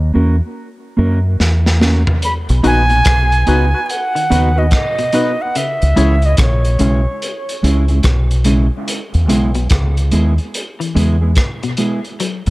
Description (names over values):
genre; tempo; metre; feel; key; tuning
dub reggae; 72 BPM; 4/4; swing 64% on 16ths; unclear; A4 = 440 Hz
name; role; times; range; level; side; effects
deep dub fingered electric bass; bass; 0.0-12.5 s; A#1 to F#2; -13 LUFS; equal; none
mellow electric guitar; accompaniment; 0.1-12.0 s; G#3 to B4; -19 LUFS; right 2 dB; harmonic tremolo, low-pass filter, dub echo
crunchy breakbeat drum kit; drums; 1.4-12.5 s; hi-hat, kick drum, rim click, snare drum, toms; -18 LUFS; equal; none
bright reedy concert flute; melody; 2.2-7.6 s; C#5 to B5; -18 LUFS; right 1 dB; dub echo
semi-hollow electric guitar; arpeggios; 2.6-12.4 s; B2 to F#3; -25 LUFS; left 4 dB; dub echo
percussive organ stab; stabs; 2.6-6.2 s; D#4 to C#5; -23 LUFS; left 3 dB; chorus, low-pass filter, dub echo
room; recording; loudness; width
light reverb, small room ambience; none; -12 LUFS; side -20 dB against mid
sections
0.0-2.2 A section; 2.2-12.5 B section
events
break 0.0-2.2; drum fill 1.4-2.2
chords
0.0 F#; 2.2 B; 5.5 C#m; 8.9 E